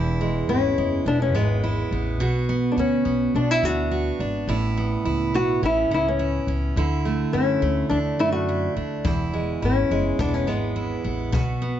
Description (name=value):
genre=acoustic pop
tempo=105 BPM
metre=4/4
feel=straight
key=unclear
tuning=A4 = 438 Hz
part: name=picked steel-string acoustic guitar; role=accompaniment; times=0.0-11.8 s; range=E2 to F#4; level=-25 LUFS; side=right 3 dB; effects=none
part: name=upright bass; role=bass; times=0.0-11.8 s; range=E1 to F#2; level=-26 LUFS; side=equal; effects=none
part: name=nylon-string guitar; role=melody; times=0.5-11.0 s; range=B3 to F#4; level=-23 LUFS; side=left 3 dB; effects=none
part: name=kick drum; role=drums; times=9.0-11.5 s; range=none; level=-27 LUFS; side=left 2 dB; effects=none
room=light reverb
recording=nothing above 7.8 kHz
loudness=-20 LUFS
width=side -10 dB against mid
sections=0.0-11.8 A section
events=none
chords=0.0 E; 2.2 Bm; 4.5 Aadd9; 6.8 Dadd9; 9.0 E